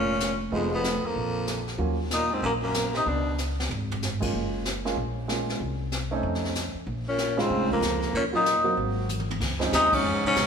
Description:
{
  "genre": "jazz, small-group swing and bop",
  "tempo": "189 BPM",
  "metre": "4/4",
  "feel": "swing 63% on 8ths",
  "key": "Bb minor",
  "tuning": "A4 = 440 Hz",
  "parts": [
    { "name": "mellow tenor saxophone", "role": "melody", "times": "0.0-3.4, 7.1-10.5 s", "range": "Ab3 to Eb4", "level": "-26 LUFS", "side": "left 2 dB", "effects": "none" },
    { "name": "edgy baritone saxophone", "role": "second line", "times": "0.0-3.4, 7.1-10.5 s", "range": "F2 to C3", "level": "-31 LUFS", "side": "right 3 dB", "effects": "none" },
    { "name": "upright bass", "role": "bass", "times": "0.0-10.5 s", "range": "F1 to F2", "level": "-31 LUFS", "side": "equal", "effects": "none" },
    { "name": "jazz brush drum kit", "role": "drums", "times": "0.2-10.5 s", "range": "brushed snare drum, crash cymbal, hi-hat, kick drum, ride cymbal, snare drum, toms", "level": "-32 LUFS", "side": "equal", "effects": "none" },
    { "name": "warm grand piano", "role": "accompaniment", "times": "0.5-2.0, 4.2-10.0 s", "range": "Db3 to Gb4", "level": "-31 LUFS", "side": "right 3 dB", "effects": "none" }
  ],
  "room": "wet recital hall reverb, RT60 1.7 s",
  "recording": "recorded in a church or concert hall",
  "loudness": "-24 LUFS",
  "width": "side -6 dB against mid",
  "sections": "0.0-9.4 A section; 9.4-10.5 B section",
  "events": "drum fill 3.4-4.0, 9.1-9.4; band accent 9.9",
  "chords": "0.0 Bbm; 0.5 Fm7b5; 1.2 Bb5; 1.8 Ebm9; 3.1 Db7(no3); 4.3 Gbmaj7; 5.6 Cm6; 6.2 F7b13; 6.9 Bbm9; 8.1 Ebm7; 8.8 Ab7; 9.4 Dbmaj9",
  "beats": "0.20 | 0.52 0.83 1.15 1.47 | 1.79 2.10 2.42 2.74 | 3.06 3.37 3.69 4.01 | 4.33 4.64 4.96 5.28 | 5.60 5.91 6.23 6.55 | 6.87 7.18 7.50 7.82 | 8.13 8.45 8.77 9.09 | 9.40 9.72 10.04 10.35"
}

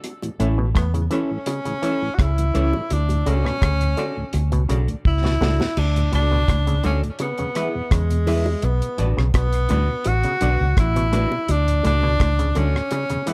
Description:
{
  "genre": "roots reggae",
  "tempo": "84 BPM",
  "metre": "4/4",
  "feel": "straight",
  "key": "unclear",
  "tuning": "A4 = 440 Hz",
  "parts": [
    { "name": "deep reggae drum kit", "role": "drums", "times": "0.0-13.3 s", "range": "crash cymbal, hi-hat, kick drum, rim click, snare drum", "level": "-26 LUFS", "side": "equal", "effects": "tape echo" },
    { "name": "bongos", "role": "percussion", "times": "0.0-13.1 s", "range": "none", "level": "-34 LUFS", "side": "equal", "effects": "none" },
    { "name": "mellow tonewheel organ", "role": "accompaniment", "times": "0.2-13.3 s", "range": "D2 to F#4", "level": "-34 LUFS", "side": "equal", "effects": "none" },
    { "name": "semi-hollow electric guitar", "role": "accompaniment", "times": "0.4-13.3 s", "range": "C#4 to E5", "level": "-31 LUFS", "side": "equal", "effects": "subtle chorus, tape echo" },
    { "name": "auto-wah clav", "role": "arpeggios", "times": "0.4-13.3 s", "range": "A2 to E3", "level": "-31 LUFS", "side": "equal", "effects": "none" },
    { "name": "vintage muted fingered electric bass", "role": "bass", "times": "0.4-12.7 s", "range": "A1 to E2", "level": "-22 LUFS", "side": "equal", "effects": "none" },
    { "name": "breathy tenor saxophone", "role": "melody", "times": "0.8-13.3 s", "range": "G#3 to F#4", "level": "-27 LUFS", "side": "equal", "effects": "tape echo" }
  ],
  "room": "little or no reverb",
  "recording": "none",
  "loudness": "-21 LUFS",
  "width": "mono",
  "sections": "0.0-5.8 A section; 5.8-13.3 B section",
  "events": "drum fill 5.1-5.8",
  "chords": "0.0 A; 2.9 D; 7.2 E; 8.6 Bm; 11.5 D",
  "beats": "| 0.04 0.76 1.47 2.19 | 2.90 3.62 4.33 5.05 | 5.77 6.48 7.20 7.91 | 8.63 9.34 10.06 10.77 | 11.48 12.20 12.91"
}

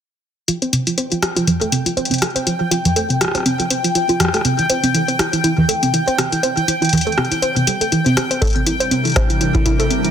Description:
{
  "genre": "IDM",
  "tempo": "121 BPM",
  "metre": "4/4",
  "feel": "swing 56% on 16ths",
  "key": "unclear",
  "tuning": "A4 = 440 Hz",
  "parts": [
    { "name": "warbly dusty pluck", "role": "arpeggios", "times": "0.5-10.1 s", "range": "E3 to C5", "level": "-18 LUFS", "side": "right 2 dB", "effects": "chorus, tape echo" },
    { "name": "booming analog drum machine", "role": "drums", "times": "0.5-10.1 s", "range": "hi-hat, rim click", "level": "-20 LUFS", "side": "left 2 dB", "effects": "none" },
    { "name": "bubbling stepped-filter texture", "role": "texture", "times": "1.4-10.1 s", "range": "G5", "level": "-22 LUFS", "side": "left 1 dB", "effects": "chorus, built-in reverb" },
    { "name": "glassy FM pad", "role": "sustained chords", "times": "8.7-10.1 s", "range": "C3 to Bb4", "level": "-22 LUFS", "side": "left 1 dB", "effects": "ensemble chorus, built-in reverb, vintage 12-bit sampler grit" },
    { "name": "electronic kick drum", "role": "drums", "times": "8.4-9.8 s", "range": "none", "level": "-18 LUFS", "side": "equal", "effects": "none" }
  ],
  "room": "moderate digital room reverb, RT60 1.3 s",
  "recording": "dense, heavily limited modern master",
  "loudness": "-15 LUFS",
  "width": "side -8 dB against mid",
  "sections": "0.5-10.1 A section",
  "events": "filter sweep on synth pluck 0.5-10.1",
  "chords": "0.5 F5; 4.4 Am7 (rootless); 8.4 C7",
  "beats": "| 0.48 0.98 1.47 1.97 | 2.47 2.96 3.46 3.95 | 4.45 4.95 5.44 5.94 | 6.43 6.93 7.42 7.92 | 8.42 8.91 9.41 9.90"
}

